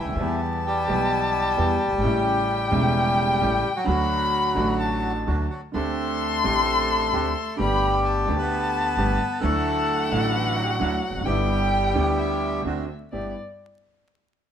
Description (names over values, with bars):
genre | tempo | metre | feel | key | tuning
tango | 130 BPM | 4/4 | rubato | G major | A4 = 442 Hz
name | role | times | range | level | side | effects
bandoneon | melody | 0.0-12.6 s | E3 to B4 | -25 LUFS | left 1 dB | none
warm violin | second line | 0.0-13.3 s | D5 to C6 | -27 LUFS | left 4 dB | none
warm concert grand piano | accompaniment | 0.0-13.3 s | E1 to G4 | -27 LUFS | right 2 dB | none
upright bass | bass | 0.0-13.3 s | E1 to E2 | -29 LUFS | equal | none
bandoneon | stabs | 0.2-13.3 s | A3 to G4 | -35 LUFS | right 4 dB | none
room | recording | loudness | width
moderate studio reverb, RT60 0.9 s | minimal, uncompressed stereo recording, vinyl crackle | -21 LUFS | side -8 dB against mid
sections
0.0-13.1 A section; 13.1-14.5 B section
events
none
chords
0.2 Em; 2.0 A7; 3.9 D; 5.7 D7sus4; 7.6 Gadd9; 9.4 Dadd9; 11.3 G6; 12.7 D7; 13.1 G6